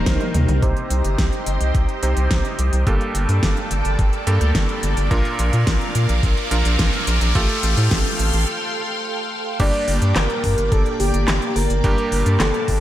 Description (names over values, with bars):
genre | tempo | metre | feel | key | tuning
synthwave | 107 BPM | 4/4 | straight | G minor | A4 = 440 Hz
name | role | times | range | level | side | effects
string machine, full ensemble | sustained chords | 0.0-12.8 s | G3 to D6 | -26 LUFS | equal | phaser, ensemble chorus, sidechain pumping, shimmer reverb
bright electric grand piano | stabs | 0.0-12.8 s | G2 to C5 | -26 LUFS | right 2 dB | low-pass filter, tape echo, shimmer reverb
round analog bass | bass | 0.0-12.8 s | G1 to Bb2 | -19 LUFS | equal | sidechain pumping
electronic kick drum | drums | 0.1-12.8 s | none | -21 LUFS | equal | none
pop drum kit | drums | 0.1-12.8 s | crash cymbal, handclaps, hi-hat, snare drum, toms | -25 LUFS | equal | gated reverb
riser | sound effects | 3.2-8.5 s | none | -29 LUFS | left 1 dB | none
expressive synth lead | melody | 9.6-12.8 s | G4 to D5 | -24 LUFS | left 1 dB | chorus, cassette tape, tape echo, shimmer reverb
FM electric piano with soft pad layer | second line | 9.6-12.8 s | G4 to D5 | -30 LUFS | equal | none
room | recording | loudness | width
light reverb | none | -17 LUFS | side -13 dB against mid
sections
0.6-9.6 A section; 9.6-12.8 B section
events
drum fill 0.0-0.6; filter sweep on electric grand piano 0.6-9.6; riser 3.2-8.5; break 8.5-9.6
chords
0.0 Cm7; 0.6 Cm; 2.9 Gmadd9; 5.1 Bb; 7.4 Fadd9/A; 9.6 Gm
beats
0.06 | 0.62 1.19 1.75 2.31 | 2.87 3.43 3.99 4.55 | 5.11 5.67 6.23 6.79 | 7.35 7.91 8.47 9.04 | 9.60 10.16 10.72 11.28 | 11.84 12.40